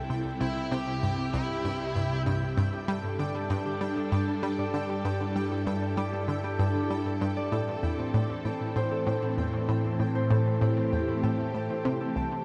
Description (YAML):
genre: ambient, sequencer-driven space music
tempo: 97 BPM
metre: 4/4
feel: straight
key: unclear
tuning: A4 = 440 Hz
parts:
  - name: phased string machine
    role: sustained chords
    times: 0.0-12.4 s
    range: C2 to A4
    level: -34 LUFS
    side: equal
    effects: ensemble chorus, phaser
  - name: pulsing gated texture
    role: texture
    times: 0.0-12.4 s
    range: G5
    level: -46 LUFS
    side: equal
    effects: chorus, built-in reverb
  - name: analog pluck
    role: riff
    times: 0.1-12.3 s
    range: C2 to G3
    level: -33 LUFS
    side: equal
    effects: chorus, tape echo
  - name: smooth overdriven lead guitar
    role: melody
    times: 0.4-2.2 s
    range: E4 to G4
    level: -42 LUFS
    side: equal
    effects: tape echo
  - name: concert harp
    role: arpeggios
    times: 2.7-12.4 s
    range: C4 to A5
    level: -35 LUFS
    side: equal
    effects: tape echo
room: wet shimmer reverb, RT60 7.8 s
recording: dark, warm production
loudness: -29 LUFS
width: mono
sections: 0.0-12.4 A section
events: none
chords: 0.0 C; 2.6 Gsus2; 7.5 C